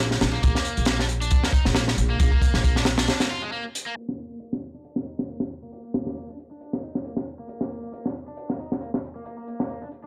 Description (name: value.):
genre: breakbeat, breaks.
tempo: 136 BPM.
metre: 4/4.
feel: swing 55% on 16ths.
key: unclear.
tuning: A4 = 441 Hz.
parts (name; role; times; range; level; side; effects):
cranked stack guitar; riff; 0.0-10.1 s; Ab3 to F4; -36 LUFS; equal; overdrive, low-pass filter, tape echo.
upright bass; bass; 0.0-3.1 s; Bb1; -28 LUFS; equal; none.
crunchy breakbeat drum kit; drums; 0.1-10.0 s; hi-hat, kick drum, snare drum; -26 LUFS; equal; low-pass filter on kick, low-pass filter on hats, low-pass filter on snare, low-pass filter on room.
room: little or no reverb.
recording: dry, gritty hardware recording, transformer saturation, low-pass filter.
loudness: -25 LUFS.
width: mono.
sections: 0.0-4.0 A section; 4.0-10.1 B section.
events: break 3.1-4.0; filter sweep on overdriven electric guitar 4.0-10.1; filter sweep 4.0-10.1.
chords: 0.0 Bb.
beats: | 0.43 0.88 1.32 1.76 | 2.20 2.64 3.08 3.52 | 3.96 4.41 4.85 5.29 | 5.73 6.17 6.61 7.05 | 7.49 7.93 8.38 8.82 | 9.26 9.70.